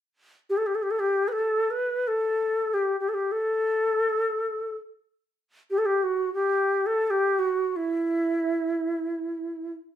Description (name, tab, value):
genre	Arabic maqam ensemble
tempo	free time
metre	none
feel	none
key	unclear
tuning	A4 = 441 Hz
part	bright reedy ney	solo	0.5-9.7 s	E4 to B4	-24 LUFS	equal	none
room	moderate studio reverb, RT60 0.7 s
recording	band playing live in one room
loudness	-24 LUFS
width	side -10 dB against mid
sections	0.0-10.0 A section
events	none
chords	none